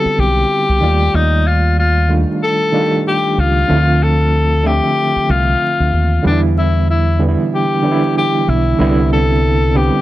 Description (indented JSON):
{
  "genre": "R&B, neo-soul",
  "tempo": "94 BPM",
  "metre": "4/4",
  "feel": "swing 59% on 16ths",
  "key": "D dorian",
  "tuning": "A4 = 441 Hz",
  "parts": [
    { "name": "breathy tenor saxophone", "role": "melody", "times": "0.0-10.0 s", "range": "D4 to A4", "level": "-16 LUFS", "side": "left 3 dB", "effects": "none" },
    { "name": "overdriven reed electric piano", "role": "accompaniment", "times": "0.0-10.0 s", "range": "D3 to E5", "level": "-17 LUFS", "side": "right 2 dB", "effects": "fast tremolo" },
    { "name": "deep dub fingered electric bass", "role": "bass", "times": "0.1-9.9 s", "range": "B1 to E2", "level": "-14 LUFS", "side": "equal", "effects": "none" }
  ],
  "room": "light reverb",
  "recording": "vinyl crackle",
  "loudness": "-12 LUFS",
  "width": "side -15 dB against mid",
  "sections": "0.0-10.0 A section",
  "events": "none",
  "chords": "0.0 Cmaj9; 0.8 Ebmaj9#11; 3.7 Dm7; 6.2 Em7; 8.8 Cmaj9"
}